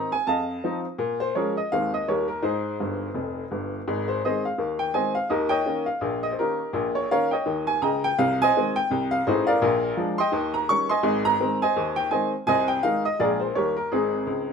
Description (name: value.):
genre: jazz, stride piano.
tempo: 167 BPM.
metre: 4/4.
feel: swing 59% on 8ths.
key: Ab major.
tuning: A4 = 441 Hz.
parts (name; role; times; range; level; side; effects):
clear upright piano; solo; 0.0-14.5 s; F1 to Db6; -22 LUFS; equal; none.
room: moderate studio reverb, RT60 0.8 s.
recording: minimal, uncompressed stereo recording.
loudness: -22 LUFS.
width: side -6 dB against mid.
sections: 0.0-3.9 A section; 3.9-14.5 A section.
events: upright piano fill 2.8-3.9, 14.3.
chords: 0.3 F7; 1.0 Bbm7; 1.7 Ab/Eb; 2.1 Eb7; 2.4 Ab; 5.3 Eb7/Bb; 8.2 Ab/C; 9.6 Bb7; 10.3 Eb7; 11.0 Ab; 12.5 Ab/C; 13.2 Bb7; 13.6 Eb7; 13.9 Ab.